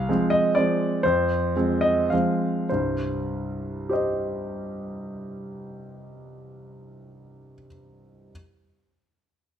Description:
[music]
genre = classical, piano waltz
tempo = 98-129 BPM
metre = 3/4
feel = rubato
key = C minor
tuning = A4 = 439 Hz
[part]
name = clear concert grand piano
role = solo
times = 0.0-8.3 s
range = C2 to F5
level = -23 LUFS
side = equal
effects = none
[sound]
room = light reverb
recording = close, detailed microphones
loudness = -22 LUFS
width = side -9 dB against mid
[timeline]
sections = 0.0-2.7 A section; 2.7-6.2 B section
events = slowing down 0.0-2.7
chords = 0.0 Fm/C; 2.7 Cm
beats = 0.08 0.57 | 1.06 1.56 2.12 | 2.71 3.28 3.88 | 4.46 5.03 5.62

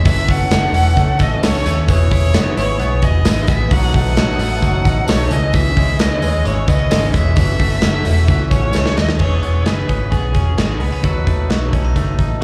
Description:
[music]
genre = jangly indie pop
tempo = 131 BPM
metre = 4/4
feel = straight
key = E major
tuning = A4 = 442 Hz
[part]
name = warm violin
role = melody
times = 0.0-11.7 s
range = G#4 to F#5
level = -24 LUFS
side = equal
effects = none
[part]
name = electric guitar through a small old amp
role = accompaniment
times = 0.0-12.4 s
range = F#2 to A4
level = -30 LUFS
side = equal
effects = spring reverb
[part]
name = warm studio string section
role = sustained chords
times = 0.0-9.2 s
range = A4 to D#6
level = -35 LUFS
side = equal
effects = none
[part]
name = direct-recorded clean electric guitar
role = arpeggios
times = 0.0-12.4 s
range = E3 to A4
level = -28 LUFS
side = equal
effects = slapback echo
[part]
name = vintage muted fingered electric bass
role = bass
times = 0.0-12.4 s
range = E1 to D#2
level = -19 LUFS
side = equal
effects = none
[part]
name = big rock drum kit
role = drums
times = 0.1-12.3 s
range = crash cymbal, hi-hat, kick drum, snare drum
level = -20 LUFS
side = equal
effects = none
[part]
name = tambourine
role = percussion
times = 0.1-9.1 s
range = none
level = -38 LUFS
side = equal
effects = none
[sound]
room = little or no reverb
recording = live gig heard through the venue's PA, club reverb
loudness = -16 LUFS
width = mono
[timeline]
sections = 0.0-9.2 A section; 9.2-12.4 B section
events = drum fill 8.7-9.2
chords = 0.1 F#m7; 1.9 E; 3.7 B7; 5.3 C#m; 7.4 F#m7; 9.2 E6; 11.0 B7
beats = | 0.06 0.52 0.97 1.43 | 1.89 2.35 2.80 3.26 | 3.71 4.17 4.63 5.08 | 5.54 6.00 6.45 6.91 | 7.37 7.83 8.28 8.74 | 9.20 9.66 10.12 10.58 | 11.04 11.49 11.95 12.41

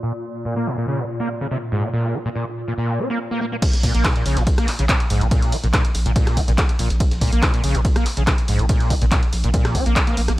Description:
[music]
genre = driving peak-time techno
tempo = 142 BPM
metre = 4/4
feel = straight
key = Bb minor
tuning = A4 = 440 Hz
[part]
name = overdriven acid bass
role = riff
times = 0.0-10.3 s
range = Ab2 to Db4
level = -23 LUFS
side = equal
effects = distortion, ensemble chorus, sidechain pumping, dub echo
[part]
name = swarming drone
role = drone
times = 0.0-3.7 s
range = Bb2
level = -30 LUFS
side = equal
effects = built-in reverb, sidechain pumping
[part]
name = breakbeat sampler-style drum kit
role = drums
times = 3.6-10.4 s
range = hi-hat, snare drum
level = -34 LUFS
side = equal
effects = none
[part]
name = electronic kick drum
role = drums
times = 3.6-10.0 s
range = none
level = -19 LUFS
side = equal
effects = studio reverb
[part]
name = punchy analog drum machine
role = drums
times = 3.6-10.4 s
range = crash cymbal, handclaps, hi-hat, ride cymbal, rim click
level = -25 LUFS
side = equal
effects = sidechain pumping on hats, studio reverb, sidechain pumping on cymbals
[part]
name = saturated sub bass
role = bass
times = 3.7-10.4 s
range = Bb1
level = -21 LUFS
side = equal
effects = overdrive, sidechain pumping, low-pass filter
[sound]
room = little or no reverb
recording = low-pass filter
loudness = -17 LUFS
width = side -16 dB against mid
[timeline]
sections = 0.0-3.6 A section; 3.6-10.4 B section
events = filter sweep on acid bass 0.0-3.6; filter sweep 0.0-3.6; drop 3.6-10.4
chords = 0.0 Bb5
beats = | 0.24 0.67 1.09 1.51 | 1.93 2.35 2.78 3.20 | 3.62 4.04 4.47 4.89 | 5.31 5.74 6.16 6.58 | 7.00 7.42 7.85 8.27 | 8.69 9.12 9.54 9.96

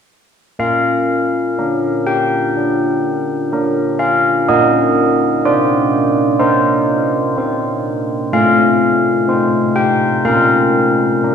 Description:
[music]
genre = classical, tune for church bells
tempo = 62 BPM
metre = 4/4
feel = straight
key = Bb major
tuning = A4 = 437 Hz
[part]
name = carillon bells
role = solo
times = 0.6-11.3 s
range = A3 to G5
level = -12 LUFS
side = equal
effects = none
[sound]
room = wet recital hall reverb, RT60 1.4 s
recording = recorded in a church or concert hall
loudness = -12 LUFS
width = side -7 dB against mid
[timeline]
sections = 0.6-11.3 A section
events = none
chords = 0.6 Bb; 4.5 Cm7/Bb; 8.3 F/A; 10.3 Bb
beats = | 0.59 1.58 2.55 3.51 | 4.48 5.45 6.41 7.38 | 8.34 9.30 10.27 11.25

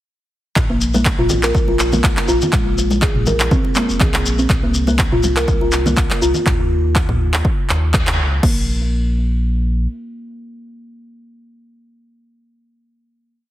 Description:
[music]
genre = afro house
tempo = 122 BPM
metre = 4/4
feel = swing 54% on 16ths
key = unclear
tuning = A4 = 441 Hz
[part]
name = warm sub bass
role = bass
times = 0.6-9.9 s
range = F1 to Eb2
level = -19 LUFS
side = equal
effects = sidechain pumping
[part]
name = afro-pop drum kit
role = drums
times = 0.6-8.5 s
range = crash cymbal, handclaps, toms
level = -21 LUFS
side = equal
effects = none
[part]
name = electronic kick drum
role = drums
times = 0.6-8.5 s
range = none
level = -18 LUFS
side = equal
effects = overdrive
[part]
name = congas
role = percussion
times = 0.6-6.4 s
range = none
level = -24 LUFS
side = left 1 dB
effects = none
[part]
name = shekere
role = percussion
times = 0.6-6.4 s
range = none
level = -26 LUFS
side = left 4 dB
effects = none
[part]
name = buzzing kalimba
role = arpeggios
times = 0.7-8.7 s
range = Ab3 to Bb4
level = -20 LUFS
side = equal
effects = sidechain pumping, ping-pong delay
[sound]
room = small room ambience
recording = heavily compressed radio sound, multiband compression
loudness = -14 LUFS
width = side -14 dB against mid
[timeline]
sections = 0.6-8.4 drop; 8.4-12.4 final note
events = drop 0.6-8.4; band accent 7.9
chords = 0.6 N.C.; 4.5 C7sus4; 6.5 N.C.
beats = | 0.56 1.05 1.55 2.04 | 2.53 3.02 3.51 4.00 | 4.50 4.99 5.48 5.97 | 6.46 6.96 7.45 7.94 | 8.43 8.92 9.41

